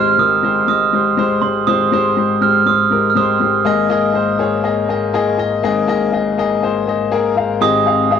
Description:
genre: pop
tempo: 121 BPM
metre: 4/4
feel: straight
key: Ab major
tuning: A4 = 440 Hz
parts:
  - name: glockenspiel with rubber mallets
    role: melody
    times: 0.0-3.5, 7.6-8.2 s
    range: C6 to F6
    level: -16 LUFS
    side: right 10 dB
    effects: cassette tape
  - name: warm grand piano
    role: accompaniment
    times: 0.0-8.2 s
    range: Ab1 to F5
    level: -15 LUFS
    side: left 5 dB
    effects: cassette tape
room: moderate spring reverb, RT60 1.2 s, small room reverb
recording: home recording on cassette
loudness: -13 LUFS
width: side -7 dB against mid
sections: 0.0-7.6 A section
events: none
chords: 0.0 Abmaj7; 3.7 Ebsus4/Ab; 7.6 Abmaj7

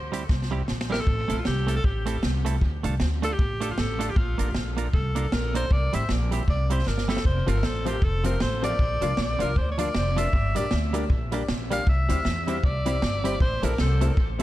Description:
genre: ska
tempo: 156 BPM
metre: 4/4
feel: swing 58% on 8ths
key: unclear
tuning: A4 = 441 Hz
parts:
  - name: upright bass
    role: bass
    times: 0.0-14.4 s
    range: F1 to E2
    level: -26 LUFS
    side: equal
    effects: none
  - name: semi-hollow electric guitar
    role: accompaniment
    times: 0.1-14.4 s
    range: F3 to Bb4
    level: -31 LUFS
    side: right 5 dB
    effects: none
  - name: swinging big-band drum kit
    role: drums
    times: 0.1-14.4 s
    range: hi-hat, kick drum, snare drum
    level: -27 LUFS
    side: equal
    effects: none
  - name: edgy alto saxophone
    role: melody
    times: 0.9-14.4 s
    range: F4 to F5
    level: -30 LUFS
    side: left 1 dB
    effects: dub echo
  - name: honky-tonk upright piano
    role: stabs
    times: 7.5-14.4 s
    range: C4 to D5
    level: -33 LUFS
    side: left 6 dB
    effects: none
room: little or no reverb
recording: none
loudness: -22 LUFS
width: side -15 dB against mid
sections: 0.0-14.4 A section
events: alto saxophone solo 0.0-14.4; drum fill 0.3-1.1, 6.9-7.3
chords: 0.0 C; 1.1 Am; 2.6 Dm; 4.2 Bb; 5.7 C; 7.3 F; 8.8 Bb; 10.3 Gm; 11.9 C; 13.4 Am

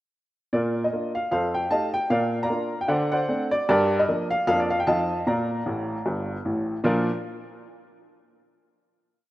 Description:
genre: jazz, stride piano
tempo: 152 BPM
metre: 4/4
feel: swing 58% on 8ths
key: Bb major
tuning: A4 = 440 Hz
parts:
  - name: clear upright piano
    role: solo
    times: 0.5-7.1 s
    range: G1 to Bb5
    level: -22 LUFS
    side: equal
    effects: none
room: moderate lush hall reverb, RT60 2.5 s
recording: rough home demo mix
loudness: -22 LUFS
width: side -16 dB against mid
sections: 0.5-6.8 A section; 6.8-8.4 final chord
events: upright piano fill 5.7-6.8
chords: 0.5 Bb; 1.3 F9; 2.1 Bb; 2.9 D7; 3.7 Gm7; 4.5 Bb/F; 4.9 F7; 5.3 Bb

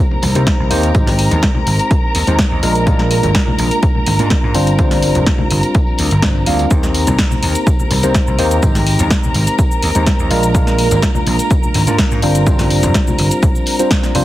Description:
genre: filtered disco house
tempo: 125 BPM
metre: 4/4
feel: straight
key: Eb major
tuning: A4 = 440 Hz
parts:
  - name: tine electric piano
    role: accompaniment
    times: 0.0-14.2 s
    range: G3 to F5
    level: -18 LUFS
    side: equal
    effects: phaser, vintage 12-bit sampler grit, sidechain pumping, low-pass filter
  - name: rich symphonic string section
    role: sustained chords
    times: 0.0-14.2 s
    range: Bb4 to Bb5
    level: -22 LUFS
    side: equal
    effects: sidechain pumping, low-pass filter
  - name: congas and tambourine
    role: percussion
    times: 0.1-14.2 s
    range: none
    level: -25 LUFS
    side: left 2 dB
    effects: sidechain pumping on perc, low-pass filter on perc
  - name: vintage slap bass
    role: bass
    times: 0.2-14.2 s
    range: F1 to Ab2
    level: -16 LUFS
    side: equal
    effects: sidechain pumping, low-pass filter
  - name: punchy analog drum machine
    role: drums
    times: 0.2-14.2 s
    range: hi-hat, shaker, snare drum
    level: -20 LUFS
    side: equal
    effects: sidechain pumping on hats, sidechain pumping on perc
  - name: electronic kick drum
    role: drums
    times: 0.5-14.0 s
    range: none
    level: -15 LUFS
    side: equal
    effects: none
room: little or no reverb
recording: heavily compressed radio sound, multiband compression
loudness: -11 LUFS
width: side -15 dB against mid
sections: 0.0-14.2 A section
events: none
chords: 0.0 Eb6; 0.9 Abmaj7; 2.6 Bb7; 4.5 G7sus4; 6.7 Eb6; 8.6 Abmaj7; 10.3 Bb7; 12.2 G7sus4

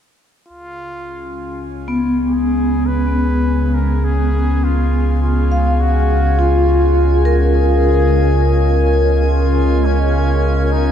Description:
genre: ambient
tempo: 52 BPM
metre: 3/4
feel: straight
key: Db mixolydian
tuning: A4 = 440 Hz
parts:
  - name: clear flugelhorn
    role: melody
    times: 0.5-10.9 s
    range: Db4 to Cb5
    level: -26 LUFS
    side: equal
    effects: ping-pong delay
  - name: glassy FM pad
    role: sustained chords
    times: 0.9-10.9 s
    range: Db3 to Ab5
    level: -25 LUFS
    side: left 2 dB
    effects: ensemble chorus, built-in reverb
  - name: warm sub bass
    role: bass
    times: 0.5-10.9 s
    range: Db2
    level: -16 LUFS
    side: equal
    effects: tube saturation
  - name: overtone-sweeping drone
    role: drone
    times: 1.3-10.9 s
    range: Db3 to Ab3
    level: -25 LUFS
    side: equal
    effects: chorus, built-in reverb, phaser
  - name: drifting glass-harmonics texture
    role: texture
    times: 1.5-10.9 s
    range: Ab5 to Ab6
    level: -33 LUFS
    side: equal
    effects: chorus, built-in reverb
  - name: vibraphone with medium mallets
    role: arpeggios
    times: 1.9-10.9 s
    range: Cb4 to F5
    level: -18 LUFS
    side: equal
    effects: ping-pong delay
room: wet huge ambient reverb, RT60 7.7 s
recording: dark, warm production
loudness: -13 LUFS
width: side -9 dB against mid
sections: 0.5-10.9 A section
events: fade-in on ambient pad 0.5-10.9; fade-in on synth texture 0.5-10.9; fade-in on flugelhorn 0.5-10.9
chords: 0.5 Db

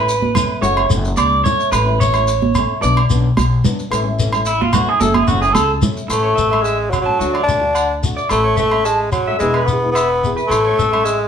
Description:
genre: highlife guitar band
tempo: 109 BPM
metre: 4/4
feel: straight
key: A major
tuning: A4 = 436 Hz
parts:
  - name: nylon-string guitar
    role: accompaniment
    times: 0.0-11.1 s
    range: E3 to A4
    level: -25 LUFS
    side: left 4 dB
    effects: none
  - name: electric guitar at the edge of break-up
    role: arpeggios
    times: 0.0-11.2 s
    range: E4 to A5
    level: -18 LUFS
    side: right 1 dB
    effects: none
  - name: upright bass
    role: bass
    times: 0.0-11.3 s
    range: E1 to D2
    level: -21 LUFS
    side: left 1 dB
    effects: none
  - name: shekere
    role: percussion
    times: 0.1-11.2 s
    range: none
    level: -22 LUFS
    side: left 2 dB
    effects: none
  - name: congas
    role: percussion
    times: 0.2-6.0 s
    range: none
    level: -20 LUFS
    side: right 5 dB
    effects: none
  - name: agogo bells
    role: percussion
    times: 0.3-11.1 s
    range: none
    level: -23 LUFS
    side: right 6 dB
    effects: none
  - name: growling tenor saxophone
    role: melody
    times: 6.1-11.3 s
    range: F#3 to D4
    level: -17 LUFS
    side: equal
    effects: none
room: wet studio reverb, RT60 0.7 s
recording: band playing live in one room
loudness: -13 LUFS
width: side -8 dB against mid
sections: 0.0-6.1 A section; 6.1-11.3 B section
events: clean electric guitar solo 0.0-6.1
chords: 0.0 A; 0.6 F#m; 1.7 A; 2.8 Bm; 3.9 A; 5.0 F#m; 6.1 A; 7.2 D; 8.3 A; 9.4 E; 10.5 A

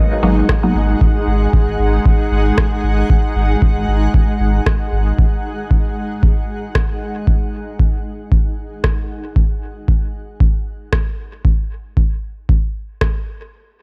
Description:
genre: dub techno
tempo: 115 BPM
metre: 4/4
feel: swing 55% on 16ths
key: unclear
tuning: A4 = 440 Hz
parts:
  - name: granular cloud pad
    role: sustained chords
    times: 0.0-9.3 s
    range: G#3 to F#5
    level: -24 LUFS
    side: equal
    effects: built-in reverb, sidechain pumping
  - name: filtered dub chord stab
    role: stabs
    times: 0.0-0.9 s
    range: F#3 to D#4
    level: -20 LUFS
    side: equal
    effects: chorus, phaser, sidechain pumping, dub echo
  - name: pure sine sub bass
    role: bass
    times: 0.2-5.1 s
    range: G#1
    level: -18 LUFS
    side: equal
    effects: tube saturation, sidechain pumping
  - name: electronic kick drum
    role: drums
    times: 0.5-13.1 s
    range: none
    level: -18 LUFS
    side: equal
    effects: none
  - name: electronic rim click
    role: drums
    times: 0.5-13.1 s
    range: none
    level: -25 LUFS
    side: equal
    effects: dub echo
room: digital ambience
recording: none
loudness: -17 LUFS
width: mono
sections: 0.0-13.5 A section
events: none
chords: 0.0 G#7(no3)

